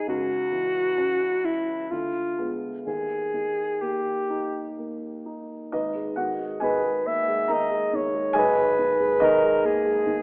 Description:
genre	classical, romantic duo for alto saxophone and grand piano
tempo	61-72 BPM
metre	3/4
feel	rubato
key	G# minor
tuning	A4 = 440 Hz
part	warm alto saxophone	melody	0.0-10.2 s	E4 to E5	-24 LUFS	equal	none
part	dark grand piano	accompaniment	0.0-10.2 s	G#1 to A#5	-26 LUFS	equal	none
room	moderate scoring stage reverb, RT60 1.9 s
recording	telephone sound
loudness	-22 LUFS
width	side -28 dB against mid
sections	0.0-5.7 A section; 5.7-10.2 B section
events	none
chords	0.1 C#madd11; 1.9 Ddim7; 2.9 D#; 5.7 G#m; 8.4 G#m/B

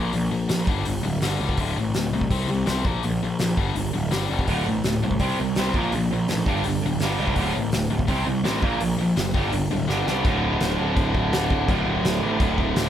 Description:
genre	punk rock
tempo	166 BPM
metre	4/4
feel	straight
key	D minor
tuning	A4 = 439 Hz
part	tight distorted guitar	riff	0.0-12.9 s	D2 to C4	-26 LUFS	left 4 dB	distortion
part	fuzz picked electric bass	bass	0.0-12.9 s	D1 to C#2	-26 LUFS	equal	overdrive
part	loose indie drum kit	drums	0.1-12.8 s	crash cymbal, hi-hat, kick drum, snare drum	-26 LUFS	equal	none
part	distorted electric guitar	riff	4.5-12.9 s	D2 to C4	-26 LUFS	right 5 dB	overdrive
room	light reverb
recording	band playing live in one room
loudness	-21 LUFS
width	side -10 dB against mid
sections	0.0-10.2 A section; 10.2-12.9 B section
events	drum fill 9.9-10.2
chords	0.0 Bb5; 0.7 G5; 1.6 D5; 2.3 C5; 2.9 Bb5; 3.6 G5; 4.5 D5; 5.2 C5; 5.7 Bb5; 6.5 G5; 7.4 D5; 8.1 C5; 8.6 Bb5; 9.3 G5; 10.2 D5

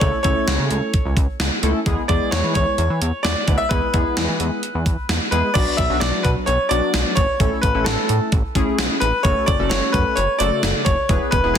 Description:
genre	synth-pop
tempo	130 BPM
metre	4/4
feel	straight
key	B dorian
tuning	A4 = 438 Hz
part	bright grand piano	melody	0.0-11.6 s	G#4 to E5	-21 LUFS	left 1 dB	ping-pong delay
part	funky polysynth comp	accompaniment	0.0-11.6 s	C#3 to B4	-24 LUFS	equal	chorus
part	chorused synth bass	bass	0.0-11.6 s	E1 to E3	-22 LUFS	equal	none
part	gated 80s digital drum machine	drums	0.0-11.6 s	crash cymbal, hi-hat, kick drum, snare drum	-21 LUFS	equal	gated reverb, gated reverb snare
room	light reverb, digital ambience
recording	dense, heavily limited modern master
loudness	-17 LUFS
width	side -8 dB against mid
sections	0.0-5.6 A section; 5.6-11.6 B section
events	none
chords	0.0 A/C#; 1.9 E; 5.6 Bm; 7.4 A; 9.2 F#m

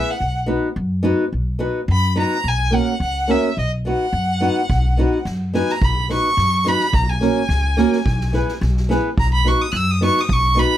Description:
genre	balkan folk, Balkan wedding band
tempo	107 BPM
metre	2/4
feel	straight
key	B major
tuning	A4 = 440 Hz
part	rich violin	melody	0.0-10.8 s	D#5 to F#6	-21 LUFS	right 1 dB	none
part	flamenco guitar	accompaniment	0.0-10.8 s	A#3 to B4	-19 LUFS	equal	none
part	upright bass	bass	0.2-10.6 s	B1 to F#2	-20 LUFS	equal	none
part	soft-mallet drum kit	percussion	4.7-10.6 s	kick drum, snare drum	-25 LUFS	right 1 dB	none
room	light reverb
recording	dark, warm production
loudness	-16 LUFS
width	side -12 dB against mid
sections	0.0-10.8 A section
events	violin solo 0.0-10.8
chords	0.2 B; 2.5 F#/B; 3.6 B; 6.9 F#/B; 8.1 E/B; 9.2 B

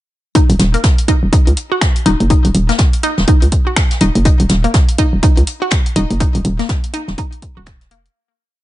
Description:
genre	minimal techno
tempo	123 BPM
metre	4/4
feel	swing 60% on 16ths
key	Eb minor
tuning	A4 = 439 Hz
part	hollow square pluck	riff	0.4-7.9 s	Bb3 to Gb4	-20 LUFS	equal	chorus, phaser, sidechain pumping, ping-pong delay
part	electronic kick drum	drums	0.4-7.8 s	none	-12 LUFS	equal	none
part	jazz brush drum kit	drums	0.4-8.1 s	hi-hat, snare drum	-25 LUFS	left 1 dB	sidechain pumping on hats, high-pass filter on hats, high-pass filter on snare, high-pass filter on room
part	punchy analog drum machine	drums	0.4-8.1 s	finger snaps, hi-hat	-22 LUFS	left 1 dB	none
part	hollow knocking FM bass	bass	0.5-8.1 s	Eb1 to Db2	-13 LUFS	equal	sidechain pumping
room	small room ambience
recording	nothing above 10.3 kHz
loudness	-11 LUFS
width	side -15 dB against mid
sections	0.4-8.2 drop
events	drop 0.4-8.2; fade-out 5.6-8.2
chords	none

